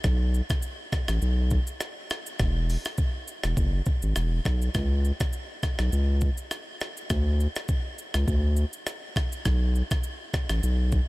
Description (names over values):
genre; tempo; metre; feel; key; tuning
afrobeats; 102 BPM; 4/4; swing 55% on 16ths; E major; A4 = 441 Hz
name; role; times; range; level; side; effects
saturated sub bass; bass; 0.0-11.0 s; E1 to D2; -24 LUFS; equal; none
jungle sampler-style drum kit; drums; 0.0-11.1 s; hi-hat, kick drum, rim click, shaker; -28 LUFS; equal; none
room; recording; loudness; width
little or no reverb; none; -24 LUFS; side -21 dB against mid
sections
0.0-11.1 A section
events
none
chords
none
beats
| 0.04 0.63 1.22 1.81 | 2.40 2.98 3.57 4.16 | 4.75 5.34 5.93 6.51 | 7.10 7.69 8.28 8.87 | 9.46 10.04 10.63